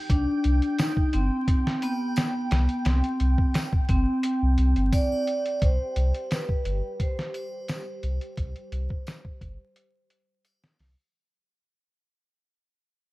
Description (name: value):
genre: trip hop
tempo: 87 BPM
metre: 4/4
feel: straight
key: unclear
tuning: A4 = 437 Hz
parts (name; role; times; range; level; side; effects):
- deep dark ambient pad; sustained chords; 0.0-11.2 s; G4 to G5; -38 LUFS; right 2 dB; chorus, built-in reverb
- vibraphone with medium hard mallets; melody; 0.1-10.4 s; B3 to D5; -28 LUFS; equal; vintage 12-bit sampler grit, tape echo
- warm sub bass; bass; 0.1-11.0 s; G1 to C2; -23 LUFS; equal; tube saturation
- trip hop sampler-style drum kit; drums; 0.1-11.0 s; hi-hat, kick drum, snare drum; -26 LUFS; equal; none
- tambourine and triangle; percussion; 0.8-10.8 s; none; -46 LUFS; equal; none
room: little or no reverb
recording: dark, warm production, vinyl crackle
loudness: -23 LUFS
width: side -19 dB against mid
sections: 0.0-5.6 A section; 5.6-11.1 B section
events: fade-out 5.6-11.1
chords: 0.0 C5